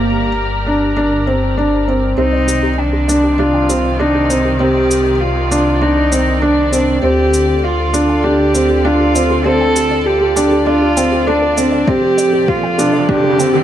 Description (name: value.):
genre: piano and strings electronica.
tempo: 99 BPM.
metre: 4/4.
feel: straight.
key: unclear.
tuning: A4 = 440 Hz.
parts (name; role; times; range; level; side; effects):
muted studio string section; sustained chords; 0.0-13.6 s; C3 to Bb5; -22 LUFS; left 1 dB; sidechain pumping.
felt-muted upright piano; riff; 0.0-13.6 s; Bb3 to D4; -15 LUFS; equal; ping-pong delay.
dark detuned saw bass; bass; 0.0-13.6 s; F1 to D2; -20 LUFS; equal; sidechain pumping.
dark cello; melody; 2.2-13.6 s; D4 to A4; -16 LUFS; right 1 dB; none.
warbly dusty pluck; arpeggios; 2.2-13.6 s; G4 to G5; -25 LUFS; right 1 dB; none.
shaker; drums; 2.5-13.5 s; none; -24 LUFS; equal; low-pass filter on perc, low-pass filter on room.
electronic kick drum; drums; 11.9-13.2 s; none; -18 LUFS; left 1 dB; none.
riser; sound effects; 12.4-13.6 s; none; -21 LUFS; right 2 dB; none.
room: moderate lush hall reverb, RT60 1.9 s, small room ambience.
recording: high-pass filter.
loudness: -11 LUFS.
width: side -11 dB against mid.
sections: 0.0-2.2 A section; 2.2-13.6 B section.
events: build-up 2.2-13.6; riser 12.4-13.6.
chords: 0.0 Gm; 2.2 Cmadd9; 7.0 Dm; 11.9 F6.